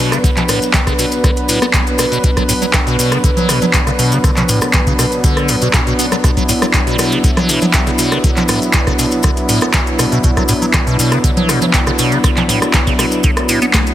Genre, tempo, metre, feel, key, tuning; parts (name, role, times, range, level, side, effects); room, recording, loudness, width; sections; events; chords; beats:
acid house; 120 BPM; 4/4; straight; B minor; A4 = 440 Hz
warm analog pad; sustained chords; 0.0-13.9 s; F#3 to B4; -17 LUFS; equal; chorus, vintage 12-bit sampler grit, sidechain pumping
liquid acid bass; riff; 0.0-13.8 s; A2 to B3; -18 LUFS; equal; phaser, overdrive, tape echo
booming analog drum machine; drums; 0.1-13.9 s; congas, handclaps, hi-hat, rim click, snare drum; -17 LUFS; equal; overdrive
maracas; percussion; 0.1-13.9 s; -23 LUFS; left 4 dB
electronic kick drum; drums; 0.2-13.8 s; -16 LUFS; equal; overdrive
light reverb, digital ambience; heavily compressed radio sound; -11 LUFS; side -12 dB against mid
0.0-13.9 A section
drum fill 13.7
0.0 Bm
| 0.24 0.74 1.24 1.74 | 2.24 2.74 3.24 3.74 | 4.24 4.74 5.24 5.74 | 6.24 6.74 7.24 7.74 | 8.24 8.74 9.24 9.74 | 10.24 10.74 11.24 11.74 | 12.24 12.74 13.24 13.74